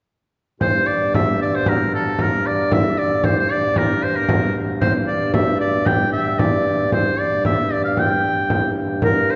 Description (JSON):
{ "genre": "medieval dance", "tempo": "114 BPM", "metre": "2/4", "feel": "straight", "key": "G dorian", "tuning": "A4 = 440 Hz", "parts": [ { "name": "clear shawm", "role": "melody", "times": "0.6-9.4 s", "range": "A4 to G5", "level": "-22 LUFS", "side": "equal", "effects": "none" }, { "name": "hand-pumped harmonium", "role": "drone", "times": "0.6-9.4 s", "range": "G2", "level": "-26 LUFS", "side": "equal", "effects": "none" }, { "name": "frame drum", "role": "percussion", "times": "0.6-9.3 s", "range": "none", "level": "-23 LUFS", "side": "equal", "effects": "none" }, { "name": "concert harp", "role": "second line", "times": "9.0-9.4 s", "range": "Bb4", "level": "-23 LUFS", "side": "equal", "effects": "none" } ], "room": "wet concert hall reverb, RT60 2.5 s", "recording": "heard from further back in the room, nothing above 7.6 kHz", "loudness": "-19 LUFS", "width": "mono", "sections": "0.6-9.0 A section", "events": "none", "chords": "none", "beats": "| 0.61 1.13 | 1.66 2.19 | 2.71 3.24 | 3.77 4.29 | 4.82 5.34 | 5.87 6.39 | 6.92 7.45 | 7.97 8.50 | 9.02" }